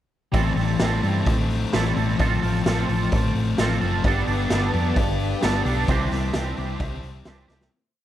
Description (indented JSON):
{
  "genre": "indie rock",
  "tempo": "130 BPM",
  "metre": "4/4",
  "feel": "straight",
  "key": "unclear",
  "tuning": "A4 = 440 Hz",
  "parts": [
    { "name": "sludgy distorted guitar", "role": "riff", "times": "0.3-7.7 s", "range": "E3 to G4", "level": "-26 LUFS", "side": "left 6 dB", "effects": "overdrive" },
    { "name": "twangy electric guitar", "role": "riff", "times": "0.3-7.7 s", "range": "E3 to A4", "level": "-27 LUFS", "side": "right 8 dB", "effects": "analog chorus, slapback echo" },
    { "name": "hollow-body short-scale fingered electric bass", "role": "bass", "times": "0.3-7.7 s", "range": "Gb1 to G2", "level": "-25 LUFS", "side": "equal", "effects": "none" },
    { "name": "raw garage drum kit", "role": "drums", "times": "0.3-7.7 s", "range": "hi-hat, kick drum, snare drum", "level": "-26 LUFS", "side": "equal", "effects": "none" },
    { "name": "string machine, full ensemble", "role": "sustained chords", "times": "4.0-7.7 s", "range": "B4 to D6", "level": "-35 LUFS", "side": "left 1 dB", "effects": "ensemble chorus" }
  ],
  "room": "small room ambience",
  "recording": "none",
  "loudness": "-20 LUFS",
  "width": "side -12 dB against mid",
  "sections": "0.3-7.7 pre-chorus",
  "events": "fade-out 5.9-7.7; drum fill 7.5",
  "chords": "0.3 Am7; 2.2 F/A; 4.0 Gadd9; 5.9 Cadd9"
}